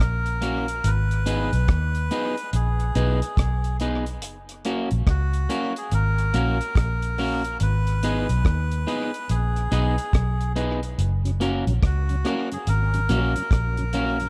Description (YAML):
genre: roots reggae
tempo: 71 BPM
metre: 4/4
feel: swing 63% on 16ths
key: F# major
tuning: A4 = 440 Hz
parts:
  - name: melodica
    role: melody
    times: 0.0-14.3 s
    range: F#4 to B4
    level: -32 LUFS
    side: equal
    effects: tape echo
  - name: vintage muted fingered electric bass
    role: bass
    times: 0.0-14.3 s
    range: F#1 to D#2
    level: -25 LUFS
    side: equal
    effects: none
  - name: deep reggae drum kit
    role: drums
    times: 0.0-14.3 s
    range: hi-hat, kick drum, rim click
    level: -27 LUFS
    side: equal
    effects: none
  - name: electric guitar at the edge of break-up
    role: accompaniment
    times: 0.4-14.2 s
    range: A#3 to B4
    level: -31 LUFS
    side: equal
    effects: tape echo
  - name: tonewheel organ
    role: accompaniment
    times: 11.2-14.3 s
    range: F#2 to C#4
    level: -36 LUFS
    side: equal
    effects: chorus vibrato, slow rotary speaker, tape echo
room: light reverb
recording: dark, warm production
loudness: -24 LUFS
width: mono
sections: 0.0-14.3 A section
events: none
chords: 0.0 F#; 0.8 G#m; 4.2 F#; 7.6 G#m; 11.0 F#